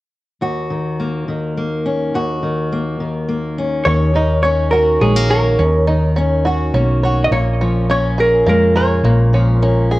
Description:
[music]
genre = folk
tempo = 104 BPM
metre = 3/4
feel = straight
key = Eb minor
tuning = A4 = 439 Hz
[part]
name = fingerpicked steel-string acoustic guitar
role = accompaniment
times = 0.4-10.0 s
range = Eb2 to Ab4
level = -18 LUFS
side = left 1 dB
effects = none
[part]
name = vintage hollow-body jazz guitar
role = melody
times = 3.9-9.3 s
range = Ab4 to Eb5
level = -16 LUFS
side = equal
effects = digital delay
[part]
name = bluegrass banjo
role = arpeggios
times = 3.9-10.0 s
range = Bb3 to Db5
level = -22 LUFS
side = right 2 dB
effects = none
[part]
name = hollow-body short-scale fingered electric bass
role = bass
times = 3.9-10.0 s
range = Bb1 to F2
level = -16 LUFS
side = equal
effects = none
[sound]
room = light reverb, small room ambience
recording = worn, warbling old tape, cassette tape, warbly pitch drift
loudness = -14 LUFS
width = side -18 dB against mid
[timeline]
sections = 0.4-3.9 A section; 3.9-10.0 B section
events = none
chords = 0.4 Ebm7; 7.3 Bbm7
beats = | 0.41 0.98 1.56 | 2.14 2.71 3.29 | 3.86 4.44 5.01 | 5.59 6.16 6.74 | 7.32 7.89 8.47 | 9.05 9.62

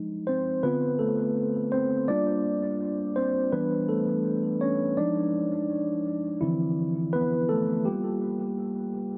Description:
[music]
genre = R&B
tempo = 83 BPM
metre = 4/4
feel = straight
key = D dorian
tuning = A4 = 440 Hz
[part]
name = mellow tine electric piano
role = solo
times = 0.0-9.2 s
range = D3 to D5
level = -27 LUFS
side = equal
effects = tape echo
[sound]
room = light reverb, digital ambience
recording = echo-heavy mix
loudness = -27 LUFS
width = mono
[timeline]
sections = 0.0-9.2 A section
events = tine electric piano solo 0.0-9.2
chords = 0.0 Fm7; 0.6 Dm7; 2.1 Gm7; 3.5 Em7; 5.0 Fm7; 6.4 Dm9; 7.9 Gm7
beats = | 0.64 1.36 2.08 2.81 | 3.53 4.25 4.97 5.70 | 6.42 7.14 7.87 8.59

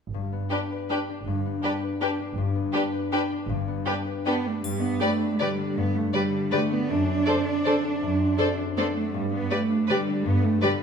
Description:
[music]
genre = classical, orchestral ballroom waltz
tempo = 160 BPM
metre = 3/4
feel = uneven beats, rubato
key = G major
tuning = A4 = 440 Hz
[part]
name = concert harp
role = arpeggios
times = 0.1-10.8 s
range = F#2 to B4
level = -29 LUFS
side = left 6 dB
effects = none
[part]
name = rich studio cello section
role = bass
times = 0.1-10.8 s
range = G2 to D4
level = -28 LUFS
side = right 4 dB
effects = none
[part]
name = rich studio double bass section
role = bass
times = 0.1-10.6 s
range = G1 to G2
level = -32 LUFS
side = right 4 dB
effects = none
[part]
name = rich studio violin section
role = melody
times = 0.5-10.7 s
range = B4 to D5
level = -32 LUFS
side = left 3 dB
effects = none
[part]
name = clear studio violin section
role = second line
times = 0.5-10.7 s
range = G4 to C5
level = -32 LUFS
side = left 2 dB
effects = none
[part]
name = rich studio viola section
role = accompaniment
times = 0.5-10.7 s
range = D4 to A4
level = -30 LUFS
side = right 1 dB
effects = none
[part]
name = triangle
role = percussion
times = 4.6-5.4 s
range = none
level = -39 LUFS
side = left 4 dB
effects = none
[sound]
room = wet recital hall reverb, RT60 1.7 s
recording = minimal, uncompressed stereo recording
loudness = -23 LUFS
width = side -6 dB against mid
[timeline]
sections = 0.1-4.6 A section; 4.6-10.8 B section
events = none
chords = 0.1 G; 6.9 D7/F#; 9.1 G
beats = | 0.13 0.51 0.90 | 1.26 1.63 2.01 | 2.37 2.74 3.12 | 3.49 3.86 4.25 | 4.64 5.01 5.40 | 5.77 6.14 6.53 | 6.89 7.27 7.66 | 8.02 8.39 8.77 | 9.14 9.51 9.89 | 10.25 10.62

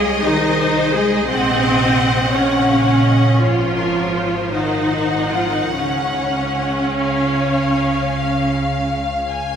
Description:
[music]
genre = classical, slow romantic movement for string orchestra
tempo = 49-58 BPM (dotted quarters)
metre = 12/8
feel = rubato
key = Db major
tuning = A4 = 438 Hz
[part]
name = warm symphonic violin section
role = melody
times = 0.0-9.6 s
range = Db5 to Gb5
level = -24 LUFS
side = left 3 dB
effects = none
[part]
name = warm symphonic violin section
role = second line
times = 0.0-9.6 s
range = Bb4 to Ab5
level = -26 LUFS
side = left 4 dB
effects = none
[part]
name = clear symphonic viola section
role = accompaniment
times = 0.0-9.3 s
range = C4 to Ab4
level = -18 LUFS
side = equal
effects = none
[part]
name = rich symphonic cello section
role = bass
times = 0.0-9.3 s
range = C3 to Ab3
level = -24 LUFS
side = right 2 dB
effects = none
[part]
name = rich symphonic double bass section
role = bass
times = 0.0-9.6 s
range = Ab1 to Db2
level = -22 LUFS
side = right 2 dB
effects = none
[sound]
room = wet church reverb, RT60 3.7 s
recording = recorded in a church or concert hall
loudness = -15 LUFS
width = side -8 dB against mid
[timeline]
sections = 0.0-9.6 A section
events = none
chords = 0.0 Ab/C; 1.3 Gb/Bb; 3.4 Db/Ab; 4.5 Ab7; 5.7 Db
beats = 0.24 | 1.28 2.33 3.40 4.53 | 5.72 6.93 8.13 9.29

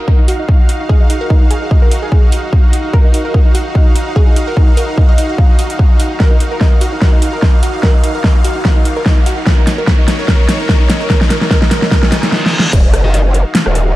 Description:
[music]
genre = heavy wobble dubstep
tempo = 147 BPM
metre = 4/4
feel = swing 55% on 16ths, half-time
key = Eb minor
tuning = A4 = 442 Hz
[part]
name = wide unison pluck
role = melody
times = 0.0-12.3 s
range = Eb4 to F5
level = -20 LUFS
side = equal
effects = digital delay
[part]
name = supersaw pad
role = sustained chords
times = 0.0-14.0 s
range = Eb4 to F5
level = -22 LUFS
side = right 1 dB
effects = sidechain pumping
[part]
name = riser and reverse cymbal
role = sound effects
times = 0.0-12.7 s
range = none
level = -25 LUFS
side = equal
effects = none
[part]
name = electronic kick drum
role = drums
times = 0.1-12.8 s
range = none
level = -10 LUFS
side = equal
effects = overdrive
[part]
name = big-room dance drum kit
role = drums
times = 0.3-13.8 s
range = crash cymbal, hi-hat, rim click, snare drum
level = -16 LUFS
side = equal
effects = overdrive
[part]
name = growl bass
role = bass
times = 12.7-14.0 s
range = Eb1 to Gb1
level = -11 LUFS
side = equal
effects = chorus, overdrive
[part]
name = thick fuzz guitar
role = stabs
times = 13.0-13.2 s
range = Eb4 to Eb5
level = -24 LUFS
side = left 2 dB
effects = distortion, digital delay
[sound]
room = light reverb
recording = dark, warm production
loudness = -9 LUFS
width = side -16 dB against mid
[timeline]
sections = 0.0-12.7 A section; 12.7-14.0 B section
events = build-up 0.0-12.7; riser 0.0-12.3; drum fill 6.2-12.3, 12.3-12.7; reverse cymbal 11.9-12.7; drop 12.7-14.0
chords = 0.0 Ebmadd9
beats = 0.08 0.49 0.90 | 1.30 1.71 2.12 2.53 | 2.94 3.34 3.75 4.16 | 4.57 4.98 5.38 5.79 | 6.20 6.61 7.02 7.42 | 7.83 8.24 8.65 9.06 | 9.47 9.87 10.28 10.69 | 11.10 11.51 11.91 12.32 | 12.73 13.14 13.55 13.96

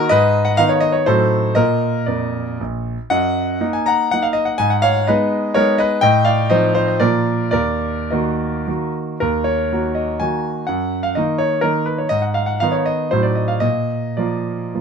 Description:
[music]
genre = classical, romantic triple-time dance for piano with dotted rhythms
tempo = 99-137 BPM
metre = 3/4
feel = rubato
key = Eb minor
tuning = A4 = 440 Hz
[part]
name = clear concert grand piano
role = solo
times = 0.0-14.8 s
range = Bb1 to Bb5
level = -16 LUFS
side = equal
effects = none
[sound]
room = light reverb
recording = close, detailed microphones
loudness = -16 LUFS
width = side -6 dB against mid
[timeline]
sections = 0.0-9.2 A section; 9.2-14.8 B section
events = none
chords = 0.1 Abm; 1.1 Adim7; 1.5 Bb; 3.1 Ebm/Gb; 4.6 Abm; 6.0 F7/A; 7.0 Bb; 7.5 Ebm; 10.7 Ebm/Gb; 12.1 Abm; 13.1 Adim7; 13.6 Bb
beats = | 0.10 0.57 1.05 | 1.55 2.07 2.60 | 3.11 3.61 4.12 | 4.60 5.07 5.55 | 6.02 6.50 7.00 | 7.52 8.11 8.68 | 9.21 9.71 10.20 | 10.67 11.15 11.64 | 12.10 12.60 13.12 | 13.63 14.19 14.74

